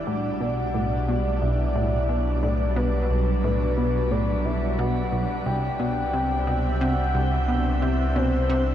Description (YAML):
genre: ambient, sequencer-driven space music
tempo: 89 BPM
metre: 4/4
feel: straight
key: unclear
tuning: A4 = 440 Hz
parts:
  - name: soft octave-layered synth lead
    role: melody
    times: 0.0-8.7 s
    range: B4 to G5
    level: -29 LUFS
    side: left 2 dB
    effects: chorus, tremolo, cassette tape, tape echo
  - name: lush unison pad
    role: sustained chords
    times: 0.0-8.7 s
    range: B2 to E5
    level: -28 LUFS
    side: equal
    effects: chorus, phaser
  - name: warm sub bass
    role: bass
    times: 0.0-8.7 s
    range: B1 to C2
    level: -26 LUFS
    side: equal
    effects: none
  - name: plucky analog bass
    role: riff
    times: 0.1-8.6 s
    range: B1 to C3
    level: -27 LUFS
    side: equal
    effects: analog chorus, tape echo
room: moderate shimmer reverb, RT60 8.2 s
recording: dark, warm production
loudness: -21 LUFS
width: side -10 dB against mid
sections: 0.0-8.7 A section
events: none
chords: 0.1 Bm; 5.5 Cmaj7